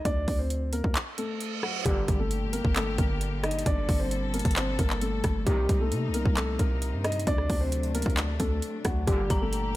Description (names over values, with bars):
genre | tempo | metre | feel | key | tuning
hip hop, trap | 133 BPM | 4/4 | half-time | G harmonic minor | A4 = 440 Hz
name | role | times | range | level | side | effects
dark grand piano | melody | 0.1-9.7 s | F#3 to Eb5 | -31 LUFS | left 1 dB | none
hard-hitting 808-style bass | bass | 0.1-9.8 s | G1 to C3 | -30 LUFS | equal | none
trap drum kit | drums | 0.1-9.6 s | handclaps, hi-hat, kick drum, rim click | -28 LUFS | equal | none
reverse cymbal and impact | sound effects | 1.2-3.7 s | none | -37 LUFS | right 2 dB | none
rich symphonic string section | sustained chords | 1.9-9.8 s | Bb2 to A4 | -35 LUFS | left 2 dB | none
warm brass ensemble | stabs | 1.9-2.2, 5.5-5.8, 9.1-9.4 s | G2 to Eb3 | -38 LUFS | right 2 dB | tape echo
dark detuned synth bell | second line | 9.3-9.8 s | Bb5 | -34 LUFS | left 1 dB | chorus, tape echo
room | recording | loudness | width
studio reverb | none | -25 LUFS | side -16 dB against mid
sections
0.0-1.9 A section; 1.9-9.8 B section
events
break 1.0-1.9; reverse cymbal 1.2-1.9; impact 1.9-3.7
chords
0.1 D7; 1.9 Gm; 5.5 Cm7; 7.3 D7; 9.1 Gm